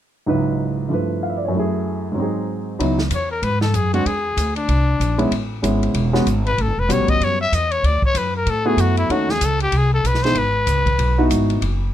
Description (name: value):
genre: jazz, small-group swing and bop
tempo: 190 BPM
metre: 4/4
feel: swing 61% on 8ths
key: C# minor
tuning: A4 = 439 Hz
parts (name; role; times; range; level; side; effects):
- warm grand piano; accompaniment; 0.3-11.6 s; C#2 to F5; -20 LUFS; right 1 dB; none
- upright bass; bass; 2.8-11.9 s; E1 to A2; -20 LUFS; equal; none
- open jazz drum kit; drums; 2.8-11.7 s; hi-hat, kick drum, ride cymbal, snare drum; -26 LUFS; equal; none
- growling trumpet; melody; 3.1-11.3 s; D4 to E5; -20 LUFS; left 3 dB; none
room: light reverb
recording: close, detailed microphones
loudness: -17 LUFS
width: side -11 dB against mid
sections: 0.3-2.8 A section; 2.8-11.9 B section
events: none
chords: 0.3 C#m11; 0.9 G13; 1.5 F#m7; 2.2 G#7; 2.8 C#m11; 4.0 E7b13; 5.3 Amaj9; 6.6 A13; 7.8 D6; 9.1 D#m7b5; 9.7 G#; 10.3 C#m11